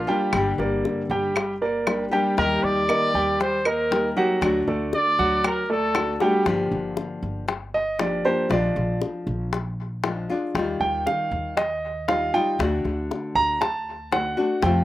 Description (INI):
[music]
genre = latin, Cuban son and guajira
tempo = 118 BPM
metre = 4/4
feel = straight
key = G minor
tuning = A4 = 442 Hz
[part]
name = warm trumpet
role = melody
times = 0.0-6.2 s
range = F4 to D5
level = -23 LUFS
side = equal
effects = slapback echo
[part]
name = nylon-string guitar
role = accompaniment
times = 0.0-14.8 s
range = C3 to G4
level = -26 LUFS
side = left 3 dB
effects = slapback echo
[part]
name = upright bass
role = bass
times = 0.0-14.8 s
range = G1 to F2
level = -30 LUFS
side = equal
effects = none
[part]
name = warm concert grand piano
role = arpeggios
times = 0.1-14.8 s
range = F#3 to Bb5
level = -24 LUFS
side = right 2 dB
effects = none
[part]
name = bongos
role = percussion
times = 0.3-14.8 s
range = none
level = -29 LUFS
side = left 6 dB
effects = slapback echo
[part]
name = claves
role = percussion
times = 0.3-6.2 s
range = none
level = -29 LUFS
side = right 3 dB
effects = none
[sound]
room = little or no reverb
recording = recorded outdoors, with no room sound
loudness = -21 LUFS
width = side -15 dB against mid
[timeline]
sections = 0.0-6.5 A section; 6.5-14.8 B section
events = drum fill 6.2; grand piano solo 6.5-14.8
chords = 0.3 Gm; 2.4 Eb; 4.4 D; 6.5 Gm7; 8.5 Bb7; 10.6 Ebadd9; 12.6 D